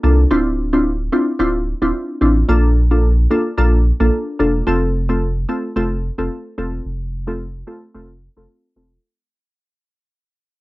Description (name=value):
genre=afrobeats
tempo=110 BPM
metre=4/4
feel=swing 55% on 16ths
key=F major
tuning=A4 = 440 Hz
part: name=glassy wavetable pluck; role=accompaniment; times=0.0-9.0 s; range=A3 to A4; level=-18 LUFS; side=equal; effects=chorus, low-pass filter
part: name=warm sub bass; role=bass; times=0.0-9.0 s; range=D1 to C2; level=-17 LUFS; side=equal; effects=none
room=little or no reverb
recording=home recording on cassette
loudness=-15 LUFS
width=side -19 dB against mid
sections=0.0-4.7 A section; 4.7-9.0 B section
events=fade-out 4.7-9.0; filter sweep on synth pluck 4.7-9.0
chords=0.3 Dm9; 2.5 Bbmaj7; 4.7 F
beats=| 0.31 0.85 1.40 1.94 | 2.49 3.03 3.58 4.12 | 4.67 5.22 5.76 6.31 | 6.85 7.40 7.94 8.49